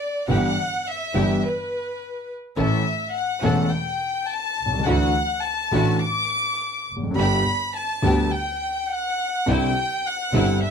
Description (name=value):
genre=tango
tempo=104 BPM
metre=4/4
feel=rubato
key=G major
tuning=A4 = 435 Hz
part: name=warm chamber violin section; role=second line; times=0.0-10.7 s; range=B4 to D6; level=-24 LUFS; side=left 2 dB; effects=none
part: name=dark concert grand piano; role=accompaniment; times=0.3-10.6 s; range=E1 to A4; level=-22 LUFS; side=equal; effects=none
part: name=warm symphonic string section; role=stabs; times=0.3-10.6 s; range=B3 to A4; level=-28 LUFS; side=right 2 dB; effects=none
part: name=warm double bass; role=bass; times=0.3-10.6 s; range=E1 to D2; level=-26 LUFS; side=right 1 dB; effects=none
room=moderate studio reverb, RT60 0.8 s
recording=close, detailed microphones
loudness=-20 LUFS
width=side -6 dB against mid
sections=0.0-10.7 A section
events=violin section solo 0.0-10.7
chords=0.3 Em/G; 2.6 A; 4.9 Dadd9; 7.2 G; 9.5 Cadd9